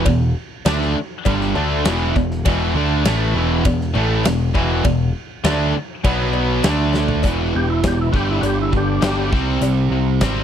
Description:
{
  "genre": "classic rock",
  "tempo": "100 BPM",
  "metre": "4/4",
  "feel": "straight",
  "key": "E minor",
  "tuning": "A4 = 440 Hz",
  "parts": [
    { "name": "biting overdriven guitar", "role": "riff", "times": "0.0-10.4 s", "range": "E2 to D4", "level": "-22 LUFS", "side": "right 11 dB", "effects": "none" },
    { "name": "cranked stack guitar", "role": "riff", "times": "0.0-7.2 s", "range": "E2 to D4", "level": "-24 LUFS", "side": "equal", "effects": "overdrive" },
    { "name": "tight distorted guitar", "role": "riff", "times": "0.0-10.4 s", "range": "E2 to D4", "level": "-24 LUFS", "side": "left 12 dB", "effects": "distortion" },
    { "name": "growling picked electric bass", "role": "bass", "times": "0.0-10.4 s", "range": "E1 to D2", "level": "-21 LUFS", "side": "equal", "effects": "overdrive" },
    { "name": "huge arena drum kit", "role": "drums", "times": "0.1-10.4 s", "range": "hi-hat, kick drum, ride cymbal, snare drum, toms", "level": "-23 LUFS", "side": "equal", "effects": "none" },
    { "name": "cowbell", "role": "percussion", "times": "0.1-10.4 s", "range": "none", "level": "-30 LUFS", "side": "left 8 dB", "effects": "none" },
    { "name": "overdriven tonewheel organ", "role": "melody", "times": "7.6-9.3 s", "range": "D4 to G4", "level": "-23 LUFS", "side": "left 2 dB", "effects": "slow rotary speaker, chorus vibrato, slapback echo" }
  ],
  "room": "little or no reverb",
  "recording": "dry, close 1970s-style studio recording",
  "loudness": "-16 LUFS",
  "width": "side -9 dB against mid",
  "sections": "0.0-7.2 A section; 7.2-10.4 B section",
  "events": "drum fill 6.9; tonewheel organ solo 7.2-10.4",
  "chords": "0.0 Em; 6.0 B5; 6.6 D5; 7.2 E5; 8.1 G5; 9.3 C5"
}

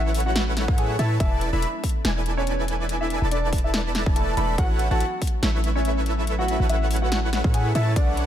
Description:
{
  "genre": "future bass",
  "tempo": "142 BPM",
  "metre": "4/4",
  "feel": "swing 55% on 16ths, half-time",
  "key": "A major",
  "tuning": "A4 = 440 Hz",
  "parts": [
    { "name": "warm concert grand piano", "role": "melody", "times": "0.0-8.2 s", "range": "A3 to G#5", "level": "-29 LUFS", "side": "left 1 dB", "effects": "sidechain pumping, ping-pong delay" },
    { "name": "ethereal airy pad", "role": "sustained chords", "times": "0.0-8.3 s", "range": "E3 to A4", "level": "-34 LUFS", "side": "equal", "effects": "ensemble chorus, built-in reverb, sidechain pumping" },
    { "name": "airy dreamy lead", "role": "arpeggios", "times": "0.0-8.3 s", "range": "E5 to B5", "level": "-33 LUFS", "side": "equal", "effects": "chorus, cassette tape, sidechain pumping" },
    { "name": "dense compressed supersaw", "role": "riff", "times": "0.0-8.3 s", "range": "D4 to B5", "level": "-29 LUFS", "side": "right 1 dB", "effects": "sidechain pumping" },
    { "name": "warm 808-style bass", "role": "bass", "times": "0.0-8.3 s", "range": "E1 to A2", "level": "-24 LUFS", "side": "equal", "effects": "sidechain pumping" },
    { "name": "big-room dance drum kit", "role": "drums", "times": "0.1-8.3 s", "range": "hi-hat, snare drum", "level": "-28 LUFS", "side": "left 1 dB", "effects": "none" },
    { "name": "electronic kick drum", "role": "drums", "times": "0.7-8.1 s", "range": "none", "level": "-22 LUFS", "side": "equal", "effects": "none" }
  ],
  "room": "digital ambience",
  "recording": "none",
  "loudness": "-20 LUFS",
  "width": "side -10 dB against mid",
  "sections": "0.0-8.3 A section",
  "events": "none",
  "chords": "0.0 A69; 1.2 E7sus4; 4.6 A69"
}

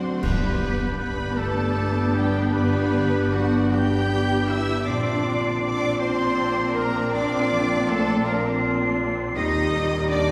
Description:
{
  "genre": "cinematic, emotional film score for orchestra",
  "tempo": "53 BPM (dotted quarters)",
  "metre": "6/8",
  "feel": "rubato",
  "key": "unclear",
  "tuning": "A4 = 439 Hz",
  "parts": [
    { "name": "dark symphonic violin section", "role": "melody", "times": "0.0-10.3 s", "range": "F#5 to G6", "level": "-36 LUFS", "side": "equal", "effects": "none" },
    { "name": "clear oboe", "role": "second line", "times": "0.0-10.3 s", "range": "F#4 to G5", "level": "-34 LUFS", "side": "equal", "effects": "none" },
    { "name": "mellow clarinet", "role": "second line", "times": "0.0-10.3 s", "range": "F4 to G4", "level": "-33 LUFS", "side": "equal", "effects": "none" },
    { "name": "warm studio violin section", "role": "second line", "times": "0.0-10.3 s", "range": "F#4 to G5", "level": "-34 LUFS", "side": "equal", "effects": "none" },
    { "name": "warm studio viola section", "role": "accompaniment", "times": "0.0-10.3 s", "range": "Eb3 to D4", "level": "-30 LUFS", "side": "equal", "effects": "none" },
    { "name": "concert harp", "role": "arpeggios", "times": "0.0-10.3 s", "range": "G2 to D5", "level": "-33 LUFS", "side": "equal", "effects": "none" },
    { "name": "rich studio cello section", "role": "bass", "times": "0.0-10.3 s", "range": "F#3 to G4", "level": "-32 LUFS", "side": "equal", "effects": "none" },
    { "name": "mellow hollow silver concert flute", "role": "second line", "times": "0.2-10.3 s", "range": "G6 to C7", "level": "-35 LUFS", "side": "equal", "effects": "none" },
    { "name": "mellow French horn section", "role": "sustained chords", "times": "0.2-10.3 s", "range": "Bb2 to G4", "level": "-33 LUFS", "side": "equal", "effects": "none" },
    { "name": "rich studio double bass section", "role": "bass", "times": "0.2-10.3 s", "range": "G1 to Eb2", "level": "-30 LUFS", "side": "equal", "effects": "none" },
    { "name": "clash cymbals and concert bass drum", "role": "percussion", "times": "0.2-1.7 s", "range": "none", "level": "-34 LUFS", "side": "equal", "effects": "none" },
    { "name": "timpani", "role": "percussion", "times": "0.2-1.3 s", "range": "G2", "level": "-35 LUFS", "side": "equal", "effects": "none" }
  ],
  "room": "wet church reverb, RT60 2.5 s",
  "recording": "heard from further back in the room",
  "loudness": "-23 LUFS",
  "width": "mono",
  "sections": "0.2-10.3 A section",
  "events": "band accent 0.2-1.0",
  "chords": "0.2 G; 4.9 Bbadd9; 9.4 Eb"
}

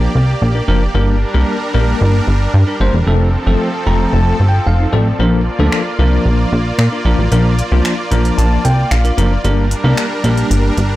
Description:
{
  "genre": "dance-pop",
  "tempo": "113 BPM",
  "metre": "4/4",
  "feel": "straight",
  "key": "Bb major",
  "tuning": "A4 = 441 Hz",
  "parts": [
    { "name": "bell-like tine electric piano", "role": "accompaniment", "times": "0.0-10.7 s", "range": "F3 to Bb5", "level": "-18 LUFS", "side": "left 2 dB", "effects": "medium stereo tremolo" },
    { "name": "supersaw pad", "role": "sustained chords", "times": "0.0-11.0 s", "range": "F3 to D5", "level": "-21 LUFS", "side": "right 1 dB", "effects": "none" },
    { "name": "plucky analog bass", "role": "bass", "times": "0.0-11.0 s", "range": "E1 to Bb2", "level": "-13 LUFS", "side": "equal", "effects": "none" },
    { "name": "pop drum kit", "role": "drums", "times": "5.7-10.9 s", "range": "finger snaps, hi-hat", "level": "-22 LUFS", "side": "equal", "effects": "soft clipping on snare" }
  ],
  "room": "light reverb",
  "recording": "blown-out, overdriven recording, overdrive",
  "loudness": "-12 LUFS",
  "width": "side -16 dB against mid",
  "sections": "0.0-11.0 A section",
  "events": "tine electric piano fill 3.6-5.2, 7.8-9.4",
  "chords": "0.0 Bb; 0.9 Gm; 3.1 F; 5.2 Bb; 9.4 Gm"
}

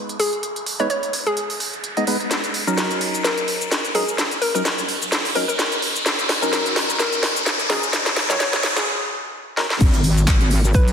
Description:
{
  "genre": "bass house",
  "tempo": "128 BPM",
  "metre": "4/4",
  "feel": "swing 56% on 16ths",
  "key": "G# minor",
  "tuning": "A4 = 441 Hz",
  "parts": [
    { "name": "percussive organ stab", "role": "stabs", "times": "0.0-9.7 s", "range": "F#3 to D#5", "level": "-26 LUFS", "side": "equal", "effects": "chorus, phaser, sidechain pumping, tape echo" },
    { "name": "riser and impact", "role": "sound effects", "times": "0.0-10.9 s", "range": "none", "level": "-27 LUFS", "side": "equal", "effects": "none" },
    { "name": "garage drum kit", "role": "drums", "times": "0.1-10.9 s", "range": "cabasa, crash cymbal, handclaps, hi-hat, snare drum", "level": "-22 LUFS", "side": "equal", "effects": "high-pass filter on hats, high-pass filter on snare, high-pass filter on perc, high-pass filter on cymbals, high-pass filter on room" },
    { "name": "hollow square pluck", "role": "melody", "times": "0.2-10.9 s", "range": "G#4 to C#5", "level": "-25 LUFS", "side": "left 1 dB", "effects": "chorus, tape echo" },
    { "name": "wobble bass", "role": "bass", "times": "9.8-10.9 s", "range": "G#1 to B1", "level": "-18 LUFS", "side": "equal", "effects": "chorus, tube saturation, sidechain pumping" },
    { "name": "electronic kick drum", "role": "drums", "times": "9.8-10.8 s", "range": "none", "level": "-16 LUFS", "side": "equal", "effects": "none" },
    { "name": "soft brush drum kit", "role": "drums", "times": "9.8-10.9 s", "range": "hi-hat, shaker, snare drum", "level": "-36 LUFS", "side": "right 2 dB", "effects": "none" }
  ],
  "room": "wet lush hall reverb, RT60 1.6 s, digital ambience",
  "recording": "heavily compressed radio sound, high-pass filter",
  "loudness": "-18 LUFS",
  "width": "side -7 dB against mid",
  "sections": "0.0-9.8 A section; 9.8-10.9 B section",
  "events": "build-up 0.0-9.8; riser 0.0-8.9; drum fill 2.3-8.9, 9.6; break 8.9-9.8; drop 9.8-10.9; impact 9.8-10.9",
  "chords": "0.0 G#m; 2.3 D#m7; 9.8 G#m"
}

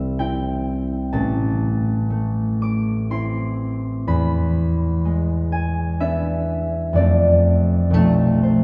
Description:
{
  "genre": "classical, solo harp piece",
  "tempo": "62 BPM",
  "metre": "3/4",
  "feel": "rubato",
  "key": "A minor",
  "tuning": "A4 = 440 Hz",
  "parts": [
    { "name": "concert harp", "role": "solo", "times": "0.0-8.6 s", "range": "A1 to D6", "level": "-20 LUFS", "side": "equal", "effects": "none" }
  ],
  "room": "wet church reverb, RT60 3.8 s",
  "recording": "heard from further back in the room",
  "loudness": "-20 LUFS",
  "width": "mono",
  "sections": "0.0-8.6 A section",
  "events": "none",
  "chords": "0.0 C; 1.1 Am; 4.1 E7; 6.9 F; 7.9 Bm7b5"
}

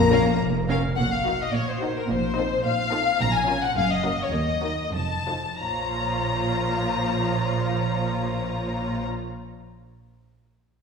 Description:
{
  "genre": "quick classical-period movement for symphony orchestra",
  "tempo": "89-110 BPM",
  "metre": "2/4",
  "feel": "straight",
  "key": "Bb minor",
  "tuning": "A4 = 440 Hz",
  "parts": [
    { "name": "rich studio violin section", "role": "second line", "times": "0.0-9.0 s", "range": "F4 to Bb5", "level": "-34 LUFS", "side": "left 2 dB", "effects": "none" },
    { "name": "clear studio cello section", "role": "bass", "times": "0.0-9.0 s", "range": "Eb2 to Bb3", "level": "-29 LUFS", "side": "right 1 dB", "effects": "none" },
    { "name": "clear studio double bass section", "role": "bass", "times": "0.0-9.0 s", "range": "F1 to Eb2", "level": "-30 LUFS", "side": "right 2 dB", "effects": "none" },
    { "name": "timpani", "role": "percussion", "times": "0.0-0.6 s", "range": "Bb2", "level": "-26 LUFS", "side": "left 3 dB", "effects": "none" },
    { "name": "rich studio violin section", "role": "melody", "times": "0.1-9.0 s", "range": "Bb4 to Bb5", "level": "-26 LUFS", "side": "left 4 dB", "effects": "none" },
    { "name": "dark studio viola section", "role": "accompaniment", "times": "0.1-9.0 s", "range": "F3 to Bb4", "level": "-32 LUFS", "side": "right 2 dB", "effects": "none" }
  ],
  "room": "wet concert hall reverb, RT60 1.7 s",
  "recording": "heard from further back in the room",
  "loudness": "-22 LUFS",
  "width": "side -5 dB against mid",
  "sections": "1.0-5.6 A section; 5.6-8.3 B section",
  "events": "slowing down 2.6-5.6",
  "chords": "0.0 Bbm; 1.0 Ebm/Bb; 2.1 F7/Bb; 3.2 Bbm; 3.8 Gb; 4.3 Ebm; 4.9 F7; 5.6 Bbm"
}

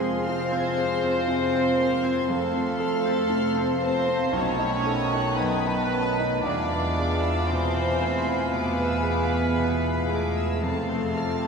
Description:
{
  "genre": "classical, romantic movement for piano and orchestra",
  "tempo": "58 BPM",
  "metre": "4/4",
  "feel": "rubato",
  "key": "unclear",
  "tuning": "A4 = 440 Hz",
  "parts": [
    { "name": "clear grand piano", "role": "melody", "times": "0.0-11.5 s", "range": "B1 to A4", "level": "-29 LUFS", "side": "equal", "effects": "none" },
    { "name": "warm symphonic violin section", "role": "melody", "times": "0.0-11.5 s", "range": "A5 to C6", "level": "-39 LUFS", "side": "left 4 dB", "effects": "none" },
    { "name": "concert flute", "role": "second line", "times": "0.0-11.5 s", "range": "Ab5 to A5", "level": "-35 LUFS", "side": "equal", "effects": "none" },
    { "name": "dark clarinet", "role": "second line", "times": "0.0-11.5 s", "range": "F5 to F#5", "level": "-36 LUFS", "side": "equal", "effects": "none" },
    { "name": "warm symphonic violin section", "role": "second line", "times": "0.0-11.5 s", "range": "D#5 to A6", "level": "-36 LUFS", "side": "left 2 dB", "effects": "none" },
    { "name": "warm bassoon", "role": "accompaniment", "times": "0.0-11.5 s", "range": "D#3 to A3", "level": "-33 LUFS", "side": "equal", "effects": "none" },
    { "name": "warm symphonic viola section", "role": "accompaniment", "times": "0.0-11.5 s", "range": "C4 to D5", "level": "-27 LUFS", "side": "equal", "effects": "none" },
    { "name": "mellow French horn section", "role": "sustained chords", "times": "0.0-11.5 s", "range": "G#3 to A4", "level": "-34 LUFS", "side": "left 2 dB", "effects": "none" },
    { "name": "dark studio double bass section", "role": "bass", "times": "0.0-11.5 s", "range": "B1 to F2", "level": "-32 LUFS", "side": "right 2 dB", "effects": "none" },
    { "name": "warm symphonic cello section", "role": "bass", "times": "0.0-11.5 s", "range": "C3 to D4", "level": "-32 LUFS", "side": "right 4 dB", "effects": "none" }
  ],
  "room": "wet church reverb, RT60 3.5 s",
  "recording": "recorded in a church or concert hall",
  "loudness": "-22 LUFS",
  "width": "side -5 dB against mid",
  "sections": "0.0-11.5 A section",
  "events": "none",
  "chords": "0.0 Fm; 2.3 F; 4.4 B7; 6.4 E7b9; 10.6 F"
}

